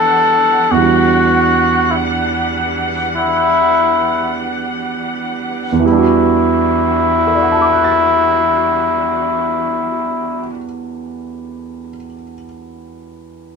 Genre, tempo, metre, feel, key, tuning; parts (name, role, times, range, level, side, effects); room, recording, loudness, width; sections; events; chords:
jazz ballad; 42-53 BPM; 4/4; swing 69% on 8ths; E minor; A4 = 440 Hz
trumpet with cup mute; melody; 0.0-10.5 s; E4 to A4; -13 LUFS; left 2 dB
warm grand piano; accompaniment; 0.0-13.6 s; E2 to A6; -18 LUFS; right 4 dB
warm studio string section; sustained chords; 0.0-10.5 s; E3 to F#5; -21 LUFS; equal
moderate studio reverb, RT60 0.5 s; band playing live in one room; -12 LUFS; side -5 dB against mid
0.0-5.8 A section; 5.8-11.5 B section
slowing down 0.0-5.8
0.0 Em9